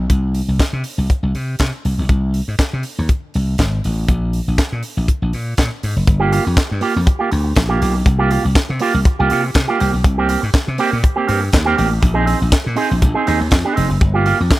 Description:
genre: disco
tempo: 121 BPM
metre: 4/4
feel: straight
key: unclear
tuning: A4 = 440 Hz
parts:
  - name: slap bass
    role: bass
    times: 0.0-14.5 s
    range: F1 to C3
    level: -18 LUFS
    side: equal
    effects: none
  - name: tight funk drum kit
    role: drums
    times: 0.1-14.6 s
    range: handclaps, hi-hat, kick drum, snare drum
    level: -17 LUFS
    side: equal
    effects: none
  - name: electric guitar with an envelope filter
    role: accompaniment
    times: 6.1-14.4 s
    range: Bb3 to Ab4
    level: -18 LUFS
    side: right 4 dB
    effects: spring reverb
room: little or no reverb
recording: none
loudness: -14 LUFS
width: side -17 dB against mid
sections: 0.0-6.1 A section; 6.1-14.6 B section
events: none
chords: 0.1 N.C.; 1.8 Ab; 4.1 N.C.; 6.1 Gm7; 8.1 C7sus4; 9.8 Abmaj9 (rootless); 12.0 Bb9sus4; 14.0 Gm7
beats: | 0.10 0.60 1.10 1.59 | 2.09 2.59 3.09 3.59 | 4.08 4.58 5.08 5.58 | 6.07 6.57 7.07 7.56 | 8.06 8.56 9.05 9.55 | 10.04 10.54 11.04 11.53 | 12.03 12.52 13.02 13.52 | 14.01 14.51

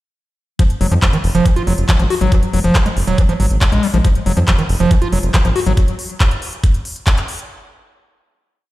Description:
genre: psychedelic trance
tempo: 139 BPM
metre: 4/4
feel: straight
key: unclear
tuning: A4 = 440 Hz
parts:
  - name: overdriven acid bass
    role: riff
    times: 0.6-5.7 s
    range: Eb3 to Gb4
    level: -18 LUFS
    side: moving between left 5 dB and right 4 dB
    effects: distortion, auto-pan, sidechain pumping, dub echo
  - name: electronic kick drum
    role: drums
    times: 0.6-7.2 s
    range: none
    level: -14 LUFS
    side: equal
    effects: none
  - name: techno drum kit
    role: drums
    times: 0.6-7.5 s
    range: handclaps, hi-hat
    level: -23 LUFS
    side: equal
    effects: none
  - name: round analog bass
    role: bass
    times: 0.8-5.7 s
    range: Eb1 to F2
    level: -16 LUFS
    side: equal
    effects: none
room: light reverb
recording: played on a big sound system in a bare room, stone room reverb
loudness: -13 LUFS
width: side -17 dB against mid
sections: 0.6-7.5 drop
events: drop 0.6-7.5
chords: 0.6 Ebmadd9 (rootless)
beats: | 0.59 1.02 1.46 1.89 | 2.32 2.75 3.18 3.61 | 4.04 4.48 4.91 5.34 | 5.77 6.20 6.63 7.07

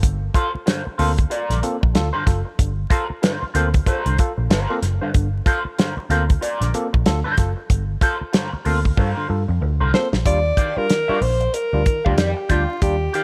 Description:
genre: funk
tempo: 94 BPM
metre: 4/4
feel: swing 60% on 16ths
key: G minor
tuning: A4 = 440 Hz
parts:
  - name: barky tine electric piano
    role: stabs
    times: 0.0-13.2 s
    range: G2 to A4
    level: -30 LUFS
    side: equal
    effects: overdrive
  - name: vintage muted picked electric bass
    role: bass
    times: 0.0-13.1 s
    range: F#1 to G2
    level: -24 LUFS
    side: equal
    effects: none
  - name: damped 70s drum kit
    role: drums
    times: 0.0-13.2 s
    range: hi-hat, kick drum, snare drum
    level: -21 LUFS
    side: equal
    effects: none
  - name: electric guitar through a small old amp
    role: accompaniment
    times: 0.3-13.2 s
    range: F4 to G5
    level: -28 LUFS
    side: equal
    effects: wah
  - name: breathy alto saxophone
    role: melody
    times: 9.9-13.2 s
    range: F4 to D5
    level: -24 LUFS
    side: equal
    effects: none
room: light reverb, studio reverb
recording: vinyl crackle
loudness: -20 LUFS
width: mono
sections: 0.0-10.3 A section; 10.3-13.2 B section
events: drum fill 9.0-10.3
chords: 0.0 Gm11; 10.3 Ebmaj9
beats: | 0.03 0.67 1.31 1.95 | 2.59 3.23 3.87 4.50 | 5.14 5.78 6.42 7.06 | 7.70 8.34 8.98 9.62 | 10.26 10.90 11.54 12.18 | 12.82

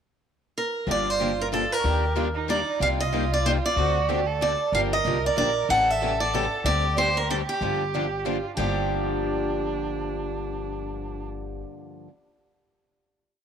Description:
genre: acoustic string swing (jazz manouche)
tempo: 187 BPM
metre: 3/4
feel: swing 59% on 8ths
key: G minor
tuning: A4 = 440 Hz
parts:
  - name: picked steel-string acoustic guitar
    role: melody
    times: 0.6-11.6 s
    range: G4 to F#5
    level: -25 LUFS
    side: right 1 dB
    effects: none
  - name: warm violin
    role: second line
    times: 0.9-11.3 s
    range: D4 to Bb4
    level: -32 LUFS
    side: right 8 dB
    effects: none
  - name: picked acoustic archtop guitar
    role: accompaniment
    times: 0.9-12.1 s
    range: G2 to A4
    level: -32 LUFS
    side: left 14 dB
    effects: none
  - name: picked steel-string acoustic guitar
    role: accompaniment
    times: 0.9-12.1 s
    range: G2 to A4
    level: -33 LUFS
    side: right 9 dB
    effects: none
  - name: upright bass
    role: bass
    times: 0.9-11.6 s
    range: G1 to Eb2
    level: -30 LUFS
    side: left 2 dB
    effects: none
room: moderate spring reverb, RT60 2.8 s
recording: 1960s-style stereo with parts hard left and right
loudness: -22 LUFS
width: side -8 dB against mid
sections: 0.0-0.9 pickup bar; 0.9-8.6 A section; 8.6-10.5 final chord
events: none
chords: 0.0 N.C.; 0.9 Gm7; 1.8 Ebmaj7; 2.8 Cm7; 3.8 D7; 4.7 Gm7; 5.7 A7; 6.7 D7sus4; 7.6 Gm7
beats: 0.22 0.55 | 0.87 1.19 1.51 | 1.84 2.16 2.48 | 2.80 3.13 3.45 | 3.77 4.09 4.41 | 4.73 5.05 5.37 | 5.69 6.01 6.33 | 6.65 6.97 7.29 | 7.61 7.93 8.26 | 8.58 8.90 9.22 | 9.54 9.87 10.19

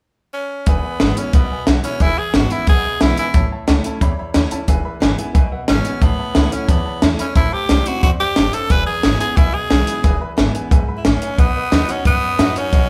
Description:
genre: rockabilly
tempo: 179 BPM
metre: 4/4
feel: straight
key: E major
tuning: A4 = 441 Hz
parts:
  - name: raspy tenor saxophone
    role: melody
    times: 0.3-3.5, 5.7-12.9 s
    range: B3 to B4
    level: -23 LUFS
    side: equal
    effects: none
  - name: picked steel-string acoustic guitar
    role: accompaniment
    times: 0.7-12.9 s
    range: E2 to F#4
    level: -29 LUFS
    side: equal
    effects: none
  - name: warm upright piano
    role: accompaniment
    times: 0.7-12.8 s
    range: B4 to C6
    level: -32 LUFS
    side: equal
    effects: none
  - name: upright bass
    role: bass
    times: 0.7-12.9 s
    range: E1 to F#2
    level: -23 LUFS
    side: equal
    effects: none
  - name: compact cocktail drum kit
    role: drums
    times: 0.7-12.8 s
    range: hi-hat, kick drum, snare drum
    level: -19 LUFS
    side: equal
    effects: none
room: moderate large studio reverb, RT60 1.1 s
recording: band playing live in one room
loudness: -17 LUFS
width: mono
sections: 0.7-12.9 A section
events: none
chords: 0.0 N.C.; 0.7 E; 3.3 A; 4.7 E; 6.0 A; 7.4 Am7; 8.7 E; 11.4 B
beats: 0.00 0.34 | 0.67 1.00 1.34 1.67 | 2.01 2.34 2.68 3.01 | 3.34 3.68 4.01 4.35 | 4.68 5.02 5.35 5.69 | 6.02 6.36 6.69 7.03 | 7.36 7.70 8.03 8.37 | 8.70 9.04 9.37 9.71 | 10.04 10.38 10.71 11.05 | 11.38 11.72 12.05 12.39 | 12.72

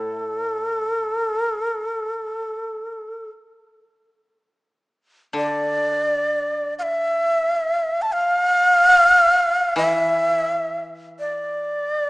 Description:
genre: japanese traditional, Japanese chamber music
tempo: free time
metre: none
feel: none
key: unclear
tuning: A4 = 440 Hz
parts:
  - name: breathy bright shakuhachi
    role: melody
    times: 0.0-12.1 s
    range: A4 to A5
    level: -18 LUFS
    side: equal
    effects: none
  - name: koto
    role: accompaniment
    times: 0.0-12.1 s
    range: A2 to E3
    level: -29 LUFS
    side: left 1 dB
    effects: none
room: moderate concert hall reverb, RT60 2.1 s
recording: small speaker sound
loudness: -18 LUFS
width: side -25 dB against mid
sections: 0.0-4.3 A section; 4.3-12.1 A section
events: none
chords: none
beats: free time

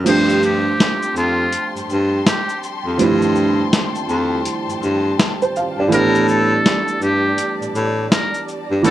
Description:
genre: lo-fi hip hop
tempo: 82 BPM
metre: 4/4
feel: swing 62% on 16ths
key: unclear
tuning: A4 = 440 Hz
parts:
  - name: felt-muted upright piano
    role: accompaniment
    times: 0.0-8.9 s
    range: E3 to F5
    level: -20 LUFS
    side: right 4 dB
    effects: cassette tape, low-pass filter
  - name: warm baritone saxophone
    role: bass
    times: 0.0-8.9 s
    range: F2 to A2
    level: -18 LUFS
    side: left 1 dB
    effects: none
  - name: trumpet with metal mute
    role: melody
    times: 0.1-8.9 s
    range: F4 to C5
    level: -21 LUFS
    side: equal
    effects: low-pass filter
  - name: warm studio string section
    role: sustained chords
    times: 0.1-8.9 s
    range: G3 to C6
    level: -27 LUFS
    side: left 2 dB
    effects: low-pass filter
  - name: boom bap sampler-style drum kit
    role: drums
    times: 0.1-8.9 s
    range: crash cymbal, hi-hat, shaker, snare drum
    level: -19 LUFS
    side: left 1 dB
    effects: none
room: light reverb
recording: none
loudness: -15 LUFS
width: side -13 dB against mid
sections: 0.1-8.9 A section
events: break 0.1-8.9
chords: 0.1 G9sus4; 5.9 A9sus4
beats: | 0.06 0.79 1.52 2.25 | 2.98 3.72 4.45 5.18 | 5.91 6.64 7.38 8.11 | 8.84

